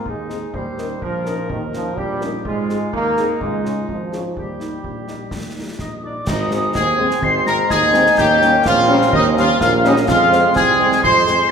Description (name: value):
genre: military-style march for wind band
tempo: 126 BPM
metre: 2/4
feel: straight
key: Ab major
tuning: A4 = 440 Hz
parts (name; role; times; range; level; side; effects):
- warm woodwind section; second line; 0.0-11.5 s; Eb4 to C6; -21 LUFS; left 1 dB; none
- clear trombone section; sustained chords; 0.0-11.5 s; Eb3 to Db4; -24 LUFS; right 2 dB; none
- warm tuba; bass; 0.1-11.4 s; Ab1 to Ab2; -23 LUFS; right 2 dB; none
- concert bass drum, concert snare drum and clash cymbals; drums; 0.1-11.4 s; none; -28 LUFS; equal; none
- mellow trumpet section; melody; 0.3-11.5 s; D4 to Eb5; -20 LUFS; left 1 dB; none
- mellow French horn section; accompaniment; 0.3-11.4 s; G3 to Bb4; -25 LUFS; left 2 dB; none
- mellow hollow piccolo; second line; 5.8-11.5 s; D6 to C7; -21 LUFS; left 2 dB; none
- clear euphonium; second line; 6.3-11.5 s; Ab3 to Eb4; -21 LUFS; right 2 dB; none
room: wet recital hall reverb, RT60 1.5 s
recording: recorded in a church or concert hall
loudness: -14 LUFS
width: side -6 dB against mid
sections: 0.0-6.3 A section; 6.3-11.5 A section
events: none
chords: 0.0 Ab; 0.5 Eb7; 2.5 Ab; 3.4 Db; 4.4 Eb; 6.3 Ab; 8.2 Eb7; 10.1 Fm